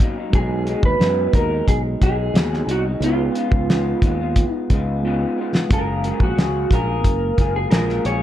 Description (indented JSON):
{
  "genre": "indie pop, bedroom pop",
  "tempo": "90 BPM",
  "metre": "4/4",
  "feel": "straight",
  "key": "F# major",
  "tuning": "A4 = 440 Hz",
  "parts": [
    { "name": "electric guitar through a small old amp", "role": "accompaniment", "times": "0.0-8.2 s", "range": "B2 to G#4", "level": "-26 LUFS", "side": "left 4 dB", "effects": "wide subtle chorus, warbly pitch drift, plate reverb" },
    { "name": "mellow tine electric piano", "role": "accompaniment", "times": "0.0-8.2 s", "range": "G#3 to E#5", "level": "-27 LUFS", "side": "right 2 dB", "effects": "medium stereo tremolo, cassette tape, plate reverb" },
    { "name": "cloth-damped thuddy drum kit", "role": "drums", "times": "0.0-8.2 s", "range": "hi-hat, kick drum, snare drum", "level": "-18 LUFS", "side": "equal", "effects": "none" },
    { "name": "fretless electric bass", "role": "bass", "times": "0.3-8.2 s", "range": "F#1 to F#2", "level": "-23 LUFS", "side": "equal", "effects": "none" },
    { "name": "electric guitar through a small old amp", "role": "melody", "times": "0.4-8.2 s", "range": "E#4 to C#5", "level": "-24 LUFS", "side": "right 2 dB", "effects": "lush chorus, tape echo, plate reverb" }
  ],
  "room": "light reverb",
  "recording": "none",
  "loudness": "-17 LUFS",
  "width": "side -12 dB against mid",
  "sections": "0.0-8.2 A section",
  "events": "drum fill 5.0-5.7",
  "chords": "0.3 G#m7/B; 3.0 C#7; 5.7 F#maj9"
}